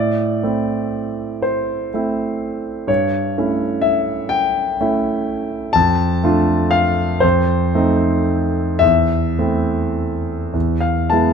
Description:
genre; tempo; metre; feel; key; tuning
classical, romantic nocturne for solo piano; 34-43 BPM (dotted quarters); 6/8; rubato; A minor; A4 = 440 Hz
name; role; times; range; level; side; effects
clear concert grand piano; solo; 0.0-11.3 s; E2 to A5; -16 LUFS; equal; none
room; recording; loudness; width
light reverb; close, detailed microphones; -16 LUFS; side -6 dB against mid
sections
0.0-11.3 A section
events
none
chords
0.0 Am; 2.9 A7/G; 5.8 Dm/F; 7.2 F7; 8.8 Am/E; 10.5 E

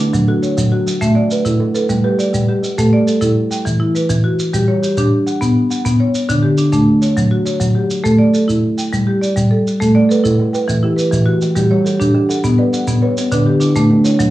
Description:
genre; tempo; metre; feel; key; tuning
southern african traditional, mbira-style interlocking cycle; 137 BPM (dotted quarters); 12/8; straight; A mixolydian; A4 = 440 Hz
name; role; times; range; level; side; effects
kalimba; arpeggios; 0.0-3.1, 10.0-14.3 s; D3 to D5; -21 LUFS; right 4 dB; cassette tape
marimba with medium hard mallets; arpeggios; 0.0-14.3 s; D3 to G5; -14 LUFS; equal; cassette tape
shekere; percussion; 0.1-14.3 s; none; -19 LUFS; right 1 dB; none
room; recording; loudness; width
moderate studio reverb, RT60 0.5 s; home recording on cassette, small room reverb; -12 LUFS; side -15 dB against mid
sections
0.0-2.8 A section; 2.8-14.3 B section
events
none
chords
0.1 F#m; 1.0 A5; 1.9 G; 2.8 A5; 3.7 Em; 4.5 G5; 5.4 B5; 6.3 D5; 7.2 F#5; 8.0 A5; 8.9 G5; 9.8 A5; 10.7 Em; 11.6 G5; 12.4 Bm; 13.3 D5

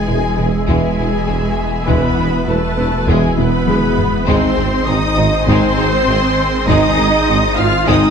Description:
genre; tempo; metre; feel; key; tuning
cinematic, hybrid orchestral and electronic film score; 100 BPM; 4/4; straight; unclear; A4 = 440 Hz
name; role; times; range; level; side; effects
dark symphonic violin section; melody; 0.0-8.1 s; G#5 to F6; -23 LUFS; left 4 dB; none
rich symphonic viola section; accompaniment; 0.0-8.1 s; G#4 to F5; -20 LUFS; right 1 dB; none
sweeping resonant pad; sustained chords; 0.0-8.1 s; B2 to E5; -24 LUFS; left 1 dB; chorus
rich symphonic cello section; bass; 0.0-8.1 s; G#3 to F4; -20 LUFS; right 3 dB; none
swelling detuned saw bass; bass; 0.0-8.1 s; E1 to G#1; -23 LUFS; left 1 dB; none
felt-muted upright piano; texture; 0.0-8.1 s; G#3 to D#5; -26 LUFS; left 3 dB; none
clear studio violin section; second line; 0.1-8.1 s; G#3 to E4; -26 LUFS; left 4 dB; none
soft round pluck; arpeggios; 0.1-8.1 s; E3 to G#4; -25 LUFS; left 4 dB; chorus
clear symphonic double bass section; bass; 0.1-8.0 s; E1 to G#1; -21 LUFS; right 4 dB; none
mellow tuba; bass; 0.1-8.0 s; E1 to G#1; -22 LUFS; right 3 dB; none
mellow French horn section; sustained chords; 0.7-8.1 s; B3 to E4; -22 LUFS; left 5 dB; none
warm trombone section; sustained chords; 0.7-8.1 s; B2 to G#3; -26 LUFS; right 3 dB; none
taiko ensemble; drums; 0.7-8.1 s; none; -22 LUFS; left 1 dB; none
room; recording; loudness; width
moderate scoring stage reverb, RT60 1.8 s; dark, warm production; -12 LUFS; side -6 dB against mid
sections
0.0-8.1 A section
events
drum fill 3.4-4.3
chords
0.0 E; 4.3 G#

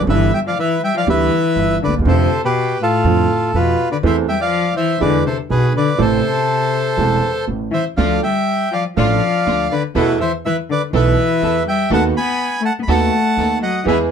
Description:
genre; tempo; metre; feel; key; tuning
tango; 122 BPM; 4/4; rubato; A minor; A4 = 440 Hz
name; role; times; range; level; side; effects
bandoneon; melody; 0.0-14.0 s; E4 to B5; -18 LUFS; right 1 dB; none
warm concert grand piano; accompaniment; 0.0-14.1 s; E1 to A4; -20 LUFS; right 5 dB; none
upright bass; bass; 0.0-14.1 s; E1 to F2; -20 LUFS; right 1 dB; none
dark cello; second line; 0.1-14.0 s; A2 to B3; -20 LUFS; left 7 dB; none
rich chamber string section; stabs; 8.0-14.1 s; A3 to A4; -26 LUFS; right 1 dB; none
room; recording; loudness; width
light reverb; none; -14 LUFS; side -7 dB against mid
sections
0.0-14.1 A section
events
none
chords
0.1 G; 2.1 Dm7/F; 4.0 Am/E; 5.0 E; 6.0 Am; 8.0 Dm; 10.0 Esus4; 11.9 B7/D#

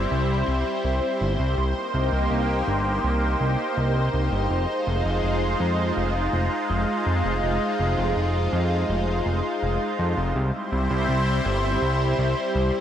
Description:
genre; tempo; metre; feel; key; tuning
synthwave; 82 BPM; 4/4; straight; F minor; A4 = 441 Hz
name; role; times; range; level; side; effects
lush unison pad; sustained chords; 0.0-12.8 s; G3 to C5; -24 LUFS; equal; chorus, phaser
fat analog bass; bass; 0.0-12.7 s; F1 to F2; -24 LUFS; equal; tube saturation
room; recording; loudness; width
moderate plate reverb, RT60 2.9 s; bright 1980s-style digital production; -21 LUFS; side -10 dB against mid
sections
0.0-12.8 A section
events
none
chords
0.0 C; 1.6 Cm7; 4.5 Fm7; 10.4 C

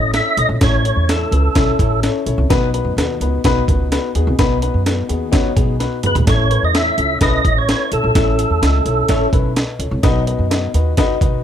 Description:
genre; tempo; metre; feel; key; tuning
uptempo 1960s-style soul; 127 BPM; 4/4; straight; A lydian; A4 = 440 Hz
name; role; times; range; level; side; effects
percussive tonewheel organ; melody; 0.0-2.0, 6.1-9.3 s; A4 to E5; -18 LUFS; right 2 dB; overdrive, chorus vibrato, slow rotary speaker, slapback echo
dark upright piano; accompaniment; 0.0-11.4 s; A2 to D#5; -21 LUFS; left 5 dB; none
upright bass; bass; 0.0-11.4 s; A1 to F#2; -18 LUFS; right 1 dB; none
breakbeat sampler-style drum kit; drums; 0.1-11.3 s; hi-hat, kick drum, snare drum, toms; -17 LUFS; right 1 dB; none
room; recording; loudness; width
light reverb; none; -14 LUFS; side -9 dB against mid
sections
0.0-11.4 A section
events
drum fill 5.8-6.3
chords
0.0 A; 2.5 B; 6.3 A; 10.0 B

